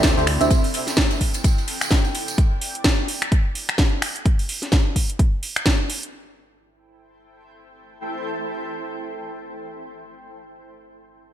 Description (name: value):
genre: piano house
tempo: 128 BPM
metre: 4/4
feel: swing 58% on 16ths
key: A minor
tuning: A4 = 439 Hz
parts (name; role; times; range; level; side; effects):
- barking FM electric piano; riff; 0.0-0.5 s; D3 to E5; -23 LUFS; right 3 dB; phaser, sidechain pumping, low-pass filter, digital delay
- fat analog bass; bass; 0.0-0.5 s; D2; -22 LUFS; equal; sidechain pumping
- electronic kick drum; drums; 0.0-5.8 s; none; -19 LUFS; equal; none
- house drum kit; drums; 0.0-6.1 s; finger snaps, hi-hat, snare drum; -23 LUFS; equal; gated reverb
- modern studio drum kit; drums; 0.0-2.4 s; ride cymbal, snare drum; -34 LUFS; left 2 dB; high-pass filter on cymbals, high-pass filter on hats, high-pass filter on snare, high-pass filter on room, gated reverb
- tambourine; percussion; 0.0-2.4 s; none; -32 LUFS; right 6 dB; none
- impact; sound effects; 0.0-0.5 s; none; barely audible; none; none
- granular cloud pad; texture; 0.0-9.3 s; C4 to G5; -32 LUFS; equal; built-in reverb, wide subtle chorus, sidechain pumping
room: light reverb, small room ambience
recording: bright 1980s-style digital production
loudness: -19 LUFS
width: side -11 dB against mid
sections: 0.0-6.1 A section; 6.1-9.9 B section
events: fade-out on ambient pad 0.0-4.3; impact 0.0-0.5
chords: 0.3 D9sus4; 2.4 G69; 4.3 N.C.; 6.1 Am7